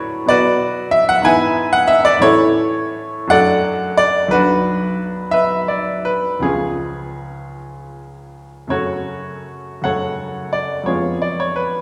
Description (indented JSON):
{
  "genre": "classical, romantic character piece for solo piano",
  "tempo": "51-63 BPM (dotted quarters)",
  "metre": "6/8",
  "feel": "rubato",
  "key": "F# minor",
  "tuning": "A4 = 439 Hz",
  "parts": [
    { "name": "clear baby grand piano", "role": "solo", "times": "0.0-11.8 s", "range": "B1 to G#5", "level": "-17 LUFS", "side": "equal", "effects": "none" }
  ],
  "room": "wet recital hall reverb, RT60 1.6 s",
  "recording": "heard from further back in the room",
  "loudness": "-17 LUFS",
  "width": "mono",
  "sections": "0.0-8.7 A section; 8.7-11.8 B section",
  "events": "none",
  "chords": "0.3 Bm; 1.3 E/G#; 2.2 A; 3.3 D/F#; 4.3 Bm; 6.4 C#; 8.7 F#m; 10.9 C#7/E#",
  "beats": "| 0.31 1.26 | 2.23 3.31 | 4.32 5.33 | 6.43 7.57 | 8.70 9.85 | 10.88"
}